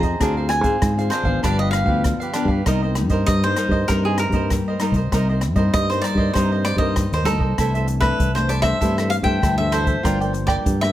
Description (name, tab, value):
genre	samba and choro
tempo	98 BPM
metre	4/4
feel	straight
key	C minor, C major from 7.6 s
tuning	A4 = 439 Hz
part	cavaquinho	melody	0.0-10.9 s	Ab4 to Bb5	-23 LUFS	equal	none
part	cavaquinho	accompaniment	0.0-10.9 s	D4 to G5	-26 LUFS	right 4 dB	none
part	nylon-string guitar	accompaniment	0.0-10.9 s	G2 to Ab4	-24 LUFS	left 3 dB	none
part	fingered electric bass	bass	0.0-10.9 s	G1 to Ab2	-22 LUFS	equal	none
part	open jazz drum kit	drums	0.0-10.9 s	hi-hat, kick drum, rim click	-24 LUFS	equal	none
room	light reverb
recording	none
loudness	-17 LUFS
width	side -13 dB against mid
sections	0.0-7.6 A section; 7.6-10.9 B section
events	none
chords	0.2 Dm7b5; 1.4 G7; 2.7 Cm7; 7.6 C69; 10.0 Gm7